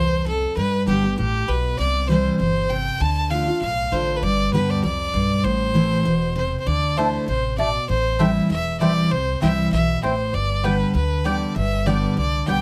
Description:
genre	bluegrass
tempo	196 BPM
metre	4/4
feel	swing 55% on 8ths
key	unclear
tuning	A4 = 439 Hz
part	clear fiddle	melody	0.0-12.6 s	G4 to A5	-26 LUFS	equal	none
part	picked steel-string acoustic guitar	accompaniment	0.0-12.6 s	E2 to G4	-24 LUFS	equal	none
part	upright bass	bass	0.0-12.6 s	E1 to G2	-28 LUFS	equal	none
part	mandolin	stabs	7.0-12.6 s	A3 to A5	-27 LUFS	equal	none
room	light reverb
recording	close, detailed microphones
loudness	-21 LUFS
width	mono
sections	0.0-12.6 A section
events	none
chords	0.0 F; 0.6 G; 1.8 C; 3.0 Dm; 4.2 G; 5.4 Am; 6.7 Dsus2; 7.9 Am7; 9.1 C; 10.3 G

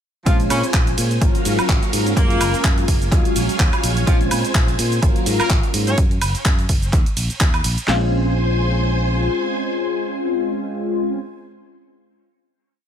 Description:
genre	filtered disco house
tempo	126 BPM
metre	4/4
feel	swing 56% on 16ths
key	Bb minor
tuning	A4 = 440 Hz
part	brilliant horn section	melody	0.3-6.0 s	Db3 to Db5	-27 LUFS	right 1 dB	vintage 12-bit sampler grit, sidechain pumping, dub echo
part	funky polysynth comp	accompaniment	0.3-11.2 s	Gb3 to F4	-23 LUFS	left 2 dB	chorus, phaser, sidechain pumping
part	string machine, full ensemble	sustained chords	0.3-11.2 s	Gb3 to Ab5	-27 LUFS	right 1 dB	ensemble chorus, sidechain pumping
part	fingered electric bass	bass	0.3-9.3 s	Gb1 to Bb2	-21 LUFS	equal	sidechain pumping
part	house drum kit	drums	0.3-7.9 s	cabasa, handclaps, hi-hat, ride cymbal, woodblock	-23 LUFS	right 2 dB	sidechain pumping on hats, sidechain pumping on cymbals, sidechain pumping on perc
part	punchy analog drum machine	drums	0.3-8.0 s	handclaps, kick drum, snare drum	-17 LUFS	equal	none
room	digital ambience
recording	none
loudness	-16 LUFS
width	side -9 dB against mid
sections	0.3-7.9 drop; 7.9-11.7 final chord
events	drop 0.3-7.9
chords	0.3 Bbm9; 1.2 Ab13sus4; 2.2 Gbmaj9; 3.1 Ebm11; 4.1 Bbm9; 5.0 Ab13sus4; 6.0 N.C.; 6.9 Eb5; 7.9 Bbm9

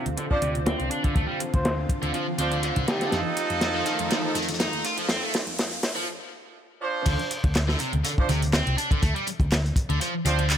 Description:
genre	breakbeat, breaks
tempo	122 BPM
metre	4/4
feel	swing 54% on 16ths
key	D phrygian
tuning	A4 = 439 Hz
part	lush unison pad	sustained chords	0.0-6.0 s	D3 to F4	-33 LUFS	equal	chorus, sidechain pumping
part	high-gain distorted guitar	riff	0.0-10.6 s	C3 to F4	-30 LUFS	equal	distortion, tube saturation, vintage 12-bit sampler grit, low-pass filter, ping-pong delay
part	riser	sound effects	1.3-6.1 s	none	-36 LUFS	equal	none
part	hollow-body short-scale picked electric bass	bass	0.1-10.6 s	C2 to F2	-27 LUFS	equal	low-pass filter
part	house drum kit	drums	0.1-10.6 s	handclaps, hi-hat	-33 LUFS	right 2 dB	high-pass filter on hats, high-pass filter on snare
part	crunchy breakbeat drum kit	drums	0.2-10.6 s	crash cymbal, hi-hat, kick drum, snare drum	-26 LUFS	equal	low-pass filter on kick, low-pass filter on hats, low-pass filter on cymbals, low-pass filter on snare, low-pass filter on room
part	breathy flute-like synth lead	melody	0.3-3.2 s	G4 to D5	-33 LUFS	equal	chorus, telephone sound, ping-pong delay
part	clear horn section	stabs	0.3-10.4 s	F3 to C5	-30 LUFS	right 3 dB	vintage 12-bit sampler grit, ping-pong delay
room	light reverb, small room ambience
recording	high-pass filter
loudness	-23 LUFS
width	side -9 dB against mid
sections	0.0-7.1 A section; 7.1-10.6 B section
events	build-up 0.0-7.1; filter sweep on drum 0.0-7.1; filter sweep 0.0-7.1; riser 1.3-6.1; drum fill 3.1-6.1; break 6.1-7.1; drop 7.1-10.6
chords	0.0 Dm7; 3.1 F7; 7.1 Dm7

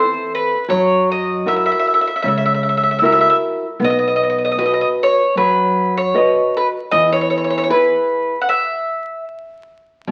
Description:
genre	italian folk, Italian serenade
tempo	77 BPM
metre	4/4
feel	swing 55% on 8ths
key	E major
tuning	A4 = 439 Hz
part	mandolin	melody	0.0-9.2 s	B4 to F#5	-18 LUFS	equal	none
part	nylon-string guitar	accompaniment	0.0-10.1 s	B2 to D#5	-21 LUFS	equal	none
part	upright bass	bass	0.0-10.1 s	B1 to F#2	-30 LUFS	equal	none
room	wet large studio reverb, RT60 1.2 s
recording	very old 78 rpm record, vinyl crackle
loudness	-16 LUFS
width	mono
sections	0.0-10.1 A section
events	stop 8.5-10.1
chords	0.0 Am/E; 0.7 F#7; 3.8 B; 6.9 E

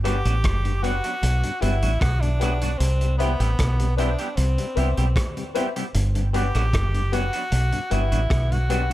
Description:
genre	roots reggae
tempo	76 BPM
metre	4/4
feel	straight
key	G major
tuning	A4 = 440 Hz
part	breathy tenor saxophone	melody	0.0-8.9 s	B3 to G4	-29 LUFS	equal	tape echo
part	clean electric guitar	accompaniment	0.0-8.9 s	F#3 to G4	-32 LUFS	right 3 dB	tape echo
part	mellow tonewheel organ	accompaniment	0.0-8.9 s	G2 to F#4	-33 LUFS	left 3 dB	chorus vibrato, slow rotary speaker, tape echo
part	warm upright piano	stabs	0.0-8.9 s	G4 to F#5	-29 LUFS	left 7 dB	none
part	deep dub fingered electric bass	bass	0.0-8.9 s	F#1 to C2	-21 LUFS	equal	none
part	vintage drum kit	drums	0.1-8.9 s	hi-hat, kick drum, rim click	-28 LUFS	equal	none
room	little or no reverb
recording	none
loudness	-20 LUFS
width	side -15 dB against mid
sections	0.0-8.9 A section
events	none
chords	0.0 Gmaj7; 2.8 Cmaj7; 5.9 Gmaj7

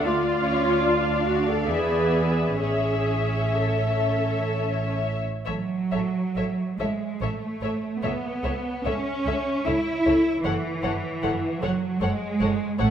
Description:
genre	classical, slow romantic movement for string orchestra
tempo	61-78 BPM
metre	3/4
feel	rubato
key	A major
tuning	A4 = 440 Hz
part	muted studio violin section	melody	0.0-12.9 s	E5 to F#5	-33 LUFS	left 6 dB	none
part	muted symphonic violin section	second line	0.0-12.9 s	B4 to E5	-31 LUFS	left 3 dB	none
part	muted symphonic viola section	accompaniment	0.0-12.9 s	F4 to A4	-28 LUFS	right 1 dB	none
part	muted symphonic cello section	bass	0.0-12.9 s	E3 to E4	-27 LUFS	right 2 dB	none
part	muted symphonic double bass section	bass	0.1-12.9 s	F#1 to E2	-28 LUFS	right 2 dB	none
room	wet recital hall reverb, RT60 1.7 s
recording	none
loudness	-22 LUFS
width	side -9 dB against mid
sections	0.0-5.5 A section; 5.5-12.9 B section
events	none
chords	0.1 Dmmaj7; 1.7 E7; 2.6 A; 5.5 N.C.; 8.0 A/C#; 10.4 F#m

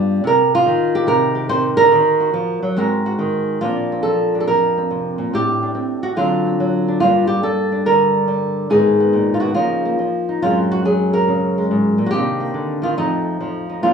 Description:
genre	solo jazz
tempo	142 BPM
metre	4/4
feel	swing 66% on 8ths, rubato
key	Bb major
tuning	A4 = 440 Hz
part	flamenco guitar	solo	0.0-13.9 s	F2 to C5	-15 LUFS	right 1 dB	none
room	wet studio reverb, RT60 0.6 s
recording	heard from further back in the room, small room ambience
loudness	-15 LUFS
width	side -6 dB against mid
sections	0.0-3.6 A section; 3.6-13.9 B section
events	none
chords	0.2 Cm7; 1.9 Ebm; 2.8 Ab9; 3.6 Bbadd9; 5.3 Am7; 6.2 D7#9; 7.0 Gmadd9; 8.7 Abmadd9; 9.6 Db69; 10.4 Gbadd9; 12.1 Cm9; 13.0 F7

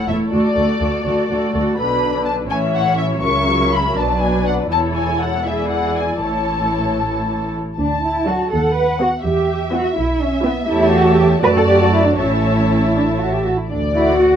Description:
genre	quick classical-period movement for string orchestra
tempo	81 BPM (dotted quarters)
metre	6/8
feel	rubato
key	A major, D major from 7.8 s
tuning	A4 = 440 Hz
part	muted studio violin section	melody	0.0-14.4 s	C#5 to C#6	-22 LUFS	left 3 dB	none
part	muted studio violin section	second line	0.0-14.4 s	G#4 to A5	-23 LUFS	left 2 dB	none
part	muted studio viola section	accompaniment	0.0-14.4 s	D3 to G4	-20 LUFS	equal	none
part	muted studio cello section	bass	0.1-14.4 s	D2 to B4	-20 LUFS	right 2 dB	none
part	muted studio double bass section	bass	0.1-14.4 s	E1 to F#2	-22 LUFS	right 3 dB	none
room	light reverb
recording	none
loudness	-15 LUFS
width	side -8 dB against mid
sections	0.0-7.8 A section; 7.8-14.4 B section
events	none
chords	0.3 D; 1.8 Bm; 2.5 A; 3.2 F#7/C#; 4.0 Bm; 4.7 A/E; 6.2 A; 7.8 D; 8.5 B7/D#; 9.2 Em; 10.7 A7/E; 11.4 D/F#; 12.2 A; 13.7 D

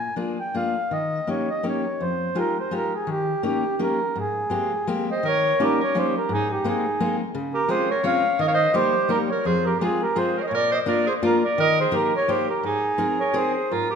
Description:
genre	musette waltz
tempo	168 BPM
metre	3/4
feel	swing 55% on 8ths, rubato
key	Ab major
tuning	A4 = 441 Hz
part	mellow accordion	melody	0.0-14.0 s	G4 to Ab5	-23 LUFS	right 1 dB	none
part	fingerpicked steel-string acoustic guitar	accompaniment	0.0-14.0 s	F2 to Bb4	-26 LUFS	left 3 dB	none
part	bright clarinet	second line	5.1-14.0 s	Eb4 to Db5	-27 LUFS	right 3 dB	none
room	wet recital hall reverb, RT60 1.5 s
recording	minimal, uncompressed stereo recording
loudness	-20 LUFS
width	side -6 dB against mid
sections	0.0-5.3 A section; 5.3-13.7 B section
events	none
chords	0.0 Bb7; 0.9 Eb7; 2.0 Fm9; 3.1 Eb7; 4.2 Abmaj9; 5.3 Eb7; 6.3 Abadd9; 7.4 Dbmaj7; 8.4 Eb; 9.5 Fm; 10.5 Bb; 11.6 Eb; 12.6 Abadd9

